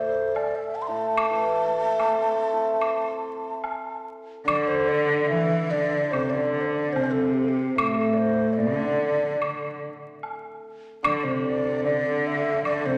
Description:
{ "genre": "chinese traditional, Chinese chamber ensemble", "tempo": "74 BPM", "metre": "4/4", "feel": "straight", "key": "A yu mode", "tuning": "A4 = 443 Hz", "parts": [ { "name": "breathy mellow xiao", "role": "melody", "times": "0.0-13.0 s", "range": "G4 to C6", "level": "-30 LUFS", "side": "equal", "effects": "none" }, { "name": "hammered dulcimer", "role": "accompaniment", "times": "0.0-13.0 s", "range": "A2 to E4", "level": "-31 LUFS", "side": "equal", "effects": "none" }, { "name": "woodblock", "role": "percussion", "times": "0.4-12.8 s", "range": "none", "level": "-32 LUFS", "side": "equal", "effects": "none" }, { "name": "warm cello", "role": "second line", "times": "4.5-13.0 s", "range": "A2 to E3", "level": "-27 LUFS", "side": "equal", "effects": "none" } ], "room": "wet recital hall reverb, RT60 1.7 s", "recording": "vinyl crackle", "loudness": "-24 LUFS", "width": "mono", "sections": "0.0-4.5 A section; 4.5-13.0 B section", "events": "none", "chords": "none", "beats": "0.36 | 1.17 1.99 2.81 3.64 | 4.48 5.31 6.13 6.95 | 7.78 8.60 9.41 10.23 | 11.04 11.85 12.65" }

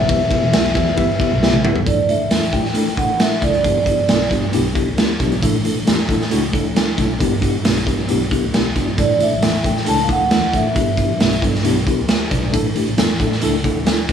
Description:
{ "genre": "uptempo 1960s-style soul", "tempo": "135 BPM", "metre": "4/4", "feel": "straight", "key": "unclear", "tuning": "A4 = 440 Hz", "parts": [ { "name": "vibraphone with soft mallets", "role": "melody", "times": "0.0-4.3, 9.0-11.4 s", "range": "D5 to A5", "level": "-19 LUFS", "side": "right 2 dB", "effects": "plate reverb" }, { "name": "warm double bass", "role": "bass", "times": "0.0-14.1 s", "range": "E1 to A2", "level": "-22 LUFS", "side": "right 1 dB", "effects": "none" }, { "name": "mellow tine electric piano", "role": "accompaniment", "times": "0.1-14.1 s", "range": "A3 to G5", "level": "-21 LUFS", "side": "left 2 dB", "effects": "medium stereo tremolo, plate reverb" }, { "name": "raw garage drum kit", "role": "drums", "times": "0.1-14.1 s", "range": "hi-hat, kick drum, ride cymbal, snare drum, toms", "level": "-18 LUFS", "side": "right 1 dB", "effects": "none" } ], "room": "light reverb", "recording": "none", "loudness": "-15 LUFS", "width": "side -8 dB against mid", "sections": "0.0-1.9 A section; 1.9-14.1 B section", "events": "drum fill 1.4-1.9; tine electric piano fill 11.9-12.5", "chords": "0.1 Em; 1.9 Asus4; 3.6 Em7/G; 5.4 Asus4; 7.2 Em7/G; 9.0 Asus4; 10.8 Em7/G; 12.5 Asus4", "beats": "| 0.09 0.53 0.97 1.42 | 1.86 2.31 2.75 3.20 | 3.64 4.09 4.53 4.98 | 5.42 5.87 6.31 6.76 | 7.20 7.65 8.09 8.54 | 8.98 9.43 9.87 10.32 | 10.76 11.21 11.65 12.10 | 12.54 12.98 13.43 13.87" }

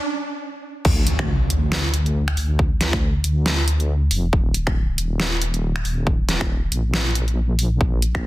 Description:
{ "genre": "deep dubstep", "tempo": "138 BPM", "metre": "4/4", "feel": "swing 57% on 16ths, half-time", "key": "unclear", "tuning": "A4 = 440 Hz", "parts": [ { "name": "dubstep drum kit", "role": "drums", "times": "0.8-8.2 s", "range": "crash cymbal, finger snaps, hi-hat, snare drum", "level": "-24 LUFS", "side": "equal", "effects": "overdrive" }, { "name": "deep soft wobble bass", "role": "bass", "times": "0.9-8.3 s", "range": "Eb1 to D2", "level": "-21 LUFS", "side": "equal", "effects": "chorus" }, { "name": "electronic kick drum", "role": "drums", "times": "0.9-8.2 s", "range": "none", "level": "-20 LUFS", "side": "equal", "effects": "overdrive" }, { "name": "impact", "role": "sound effects", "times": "0.9-2.6 s", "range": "none", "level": "-26 LUFS", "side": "equal", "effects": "none" } ], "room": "digital ambience", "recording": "dense, heavily limited modern master", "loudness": "-18 LUFS", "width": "side -17 dB against mid", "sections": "0.8-8.3 A section", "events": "stop 0.0-0.8; drop 0.8-8.3; impact 0.8-2.6", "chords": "none", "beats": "0.42 | 0.85 1.28 1.72 2.15 | 2.59 3.02 3.46 3.89 | 4.33 4.76 5.20 5.63 | 6.07 6.50 6.94 7.37 | 7.81 8.24" }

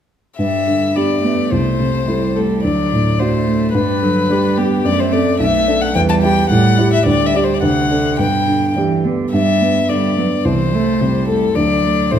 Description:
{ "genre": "quick classical-period movement for piano trio", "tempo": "108 BPM", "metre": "2/4", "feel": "straight", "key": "G major", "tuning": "A4 = 441 Hz", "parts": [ { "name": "warm violin", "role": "melody", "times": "0.4-12.2 s", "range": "G4 to A5", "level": "-18 LUFS", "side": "left 5 dB", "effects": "none" }, { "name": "rich cello", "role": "second line", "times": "0.4-12.2 s", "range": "B2 to B3", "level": "-20 LUFS", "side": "right 6 dB", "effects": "none" }, { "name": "dark grand piano", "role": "accompaniment", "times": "0.4-12.2 s", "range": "B1 to A4", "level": "-16 LUFS", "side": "equal", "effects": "none" } ], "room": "wet recital hall reverb, RT60 1.6 s", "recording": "minimal, uncompressed stereo recording", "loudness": "-13 LUFS", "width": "side -9 dB against mid", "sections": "0.4-9.3 A section; 9.3-12.2 A section", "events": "none", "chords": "0.4 G; 1.5 Am/C; 2.6 D; 3.7 G; 4.9 F#dim; 5.4 Bm7; 6.0 Em; 6.5 A5; 7.1 G5/D; 7.6 D7; 8.2 G; 10.5 Am/C; 11.6 D", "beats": "| 0.39 0.95 | 1.51 2.07 | 2.63 3.19 | 3.75 4.30 | 4.85 5.40 | 5.95 6.51 | 7.07 7.62 | 8.19 8.76 | 9.34 9.90 | 10.45 11.01 | 11.56 12.12" }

